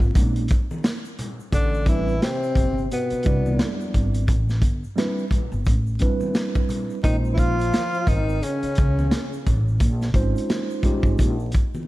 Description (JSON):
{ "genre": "hip hop, jazz-hop", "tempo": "87 BPM", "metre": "4/4", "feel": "swing 60% on 16ths", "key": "unclear", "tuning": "A4 = 440 Hz", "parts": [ { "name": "mellow tine electric piano", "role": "accompaniment", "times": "0.0-11.4 s", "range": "G3 to D5", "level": "-27 LUFS", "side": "right 2 dB", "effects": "slow stereo tremolo" }, { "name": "upright bass", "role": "bass", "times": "0.0-11.5 s", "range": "G1 to Db2", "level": "-24 LUFS", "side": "equal", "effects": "none" }, { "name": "crunchy breakbeat drum kit", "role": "drums", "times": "0.0-11.7 s", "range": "hi-hat, kick drum, snare drum", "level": "-22 LUFS", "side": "equal", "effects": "none" }, { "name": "egg shaker and congas", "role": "percussion", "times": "0.0-11.9 s", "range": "none", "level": "-36 LUFS", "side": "left 1 dB", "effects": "none" }, { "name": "breathy tenor saxophone", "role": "melody", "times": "1.5-9.5 s", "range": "B3 to F4", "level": "-26 LUFS", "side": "equal", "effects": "none" }, { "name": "breathy trombone", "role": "second line", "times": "1.5-9.5 s", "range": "B2 to F3", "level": "-29 LUFS", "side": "left 2 dB", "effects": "none" } ], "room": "light reverb, studio reverb", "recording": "vinyl crackle", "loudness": "-19 LUFS", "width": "side -17 dB against mid", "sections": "0.0-1.5 A section; 1.5-11.9 B section", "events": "tine electric piano solo 0.0-1.5", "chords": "0.0 Bbm11; 1.5 Am11; 7.0 Bbm11" }